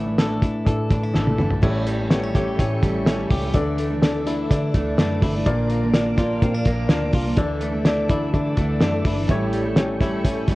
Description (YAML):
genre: jangly indie pop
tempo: 125 BPM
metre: 4/4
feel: straight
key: unclear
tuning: A4 = 439 Hz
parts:
  - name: picked steel-string acoustic guitar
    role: accompaniment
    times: 0.0-10.6 s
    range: A2 to E4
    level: -27 LUFS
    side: right 3 dB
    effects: none
  - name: warm upright piano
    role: accompaniment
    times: 0.0-10.6 s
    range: D4 to F5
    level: -28 LUFS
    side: left 2 dB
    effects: none
  - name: direct-recorded clean electric guitar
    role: arpeggios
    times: 0.0-10.6 s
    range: A2 to A4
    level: -26 LUFS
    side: left 2 dB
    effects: none
  - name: vintage muted picked electric bass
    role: bass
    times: 0.0-10.6 s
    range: G1 to D3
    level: -27 LUFS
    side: equal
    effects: none
  - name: cloth-damped thuddy drum kit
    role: drums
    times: 0.2-10.6 s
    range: crash cymbal, hi-hat, kick drum, snare drum, toms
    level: -21 LUFS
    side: equal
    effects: none
  - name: ensemble organ-string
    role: sustained chords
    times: 1.6-10.6 s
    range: A4 to D6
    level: -32 LUFS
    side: equal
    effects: ensemble chorus
room: light reverb, small room ambience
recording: worn, warbling old tape, cassette tape, warbly pitch drift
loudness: -18 LUFS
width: side -19 dB against mid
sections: 0.0-1.6 A section; 1.6-10.6 B section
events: drum fill 1.1-1.6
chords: 0.0 Asus4; 1.6 A7; 3.5 Dsus2; 5.5 Bb; 7.4 Dsus2; 9.3 A7